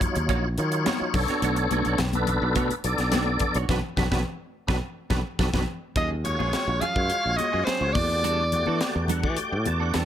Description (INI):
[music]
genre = electric jazz fusion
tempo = 106 BPM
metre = 4/4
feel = straight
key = unclear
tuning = A4 = 441 Hz
[part]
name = tonewheel organ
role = accompaniment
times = 0.0-10.1 s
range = Gb3 to A5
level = -28 LUFS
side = left 1 dB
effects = slow rotary speaker, chorus vibrato
[part]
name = clean electric guitar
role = stabs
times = 0.0-10.1 s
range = Gb3 to Db5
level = -33 LUFS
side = right 11 dB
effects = analog chorus
[part]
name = modern bright fingered electric bass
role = bass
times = 0.0-10.1 s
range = Bb1 to E3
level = -27 LUFS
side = equal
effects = none
[part]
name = crisp fusion drum kit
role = drums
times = 0.0-10.1 s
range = hi-hat, kick drum, snare drum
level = -29 LUFS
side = equal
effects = none
[part]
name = congas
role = percussion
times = 0.0-9.8 s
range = none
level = -33 LUFS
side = left 4 dB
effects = none
[part]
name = bright soprano saxophone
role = melody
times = 6.0-9.1 s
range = C5 to F5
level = -26 LUFS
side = equal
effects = plate reverb
[sound]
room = light reverb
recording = none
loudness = -22 LUFS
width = side -10 dB against mid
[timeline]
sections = 0.0-6.0 A section; 6.0-10.1 B section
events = band accent 3.7-6.0; drum fill 5.4-6.0; tonewheel organ fill 8.8-10.1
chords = 0.0 Ebm9; 1.1 Bm9; 6.0 Ebm11; 8.0 Em11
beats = 0.30 0.86 | 1.43 2.00 2.56 3.13 | 3.70 4.26 4.83 5.40 | 5.96 6.53 7.10 7.67 | 8.24 8.81 9.38 9.94